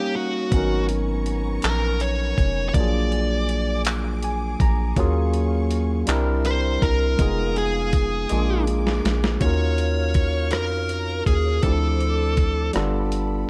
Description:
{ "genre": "slow six-eight R&B", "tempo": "54 BPM (dotted quarters)", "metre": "6/8", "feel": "straight", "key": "Eb minor", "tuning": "A4 = 440 Hz", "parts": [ { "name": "dark smooth lead guitar", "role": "melody", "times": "0.0-12.7 s", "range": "Gb4 to D5", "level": "-29 LUFS", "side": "equal", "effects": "overdrive" }, { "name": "barky tine electric piano", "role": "accompaniment", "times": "0.0-13.5 s", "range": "F3 to Bb5", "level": "-28 LUFS", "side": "equal", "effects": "overdrive" }, { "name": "warm symphonic string section", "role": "sustained chords", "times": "0.0-13.5 s", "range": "Cb4 to F6", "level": "-40 LUFS", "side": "equal", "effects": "none" }, { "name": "rubbery square bass", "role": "bass", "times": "0.5-13.5 s", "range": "F1 to F2", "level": "-26 LUFS", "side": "equal", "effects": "none" }, { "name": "dusty soul sampler-style drum kit", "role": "drums", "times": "0.5-13.3 s", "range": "handclaps, hi-hat, kick drum, rim click, snare drum", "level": "-26 LUFS", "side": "equal", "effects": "none" } ], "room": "digital ambience", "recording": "dark, warm production", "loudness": "-22 LUFS", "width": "mono", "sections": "0.0-9.4 A section; 9.4-13.5 B section", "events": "break 0.0-0.5; lead electric guitar solo 0.0-9.4; tine electric piano fill 3.9-5.0; drum fill 8.3-9.4", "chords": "0.0 Eb7; 0.5 Abm11; 2.7 Bb7b13; 5.0 Ebm11; 6.1 C7; 7.2 Fm7b5; 8.3 Bb7; 9.4 Ebm9; 11.6 Dm7; 12.7 G9" }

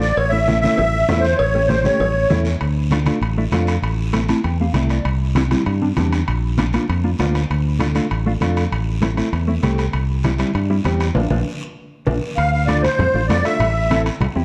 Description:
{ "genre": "latin, cumbia", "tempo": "197 BPM", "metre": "4/4", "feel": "straight", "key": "D minor", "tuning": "A4 = 442 Hz", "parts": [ { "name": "musette accordion", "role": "melody", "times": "0.0-2.4, 12.4-14.0 s", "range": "C5 to F5", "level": "-21 LUFS", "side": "equal", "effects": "none" }, { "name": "mellow electric guitar", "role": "accompaniment", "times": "0.0-14.4 s", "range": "F3 to A5", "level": "-25 LUFS", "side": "equal", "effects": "phaser" }, { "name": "fingered electric bass", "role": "bass", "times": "0.0-14.4 s", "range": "A1 to G2", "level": "-22 LUFS", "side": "equal", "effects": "none" }, { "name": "guiro", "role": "percussion", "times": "0.0-14.4 s", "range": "none", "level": "-37 LUFS", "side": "equal", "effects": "none" }, { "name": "cowbell and timbales", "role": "percussion", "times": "0.2-14.4 s", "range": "none", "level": "-31 LUFS", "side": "equal", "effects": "none" }, { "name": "congas", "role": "percussion", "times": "0.5-14.4 s", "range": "none", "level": "-28 LUFS", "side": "equal", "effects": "none" } ], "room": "moderate large studio reverb, RT60 1.4 s", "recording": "none", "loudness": "-18 LUFS", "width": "mono", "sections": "0.0-2.6 A section; 2.6-12.4 B section; 12.4-14.4 C section", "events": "clean electric guitar fill 4.1-5.1; drum fill 11.2-12.4; band accent 11.2-12.4", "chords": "0.2 A; 2.6 Dm; 3.8 Am; 5.1 C; 6.3 Bb; 7.5 Dm; 8.7 Am; 9.9 C; 11.2 Bb; 12.4 Dm; 13.6 Am" }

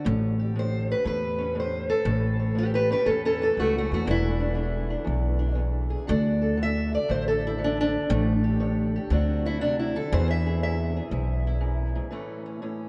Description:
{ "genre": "acoustic country blues, solo or duo", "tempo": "119 BPM", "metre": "4/4", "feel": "swing 67% on 8ths", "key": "A mixolydian", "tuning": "A4 = 440 Hz", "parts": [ { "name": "fingerpicked steel-string acoustic guitar", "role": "melody", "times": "0.0-12.9 s", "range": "E2 to E5", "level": "-29 LUFS", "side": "equal", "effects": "none" }, { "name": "upright bass", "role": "bass", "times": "0.1-12.0 s", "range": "E1 to E2", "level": "-28 LUFS", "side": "equal", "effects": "none" } ], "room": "wet cathedral reverb, RT60 7.1 s", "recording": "in a vast, echoing space, nothing above 10.3 kHz", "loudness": "-26 LUFS", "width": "mono", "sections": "0.0-12.1 A section", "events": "steel-string acoustic guitar solo 0.0-12.1", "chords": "0.1 A7; 4.1 E7(no3); 6.1 D; 8.1 A7; 9.1 D7; 10.1 E; 12.1 A" }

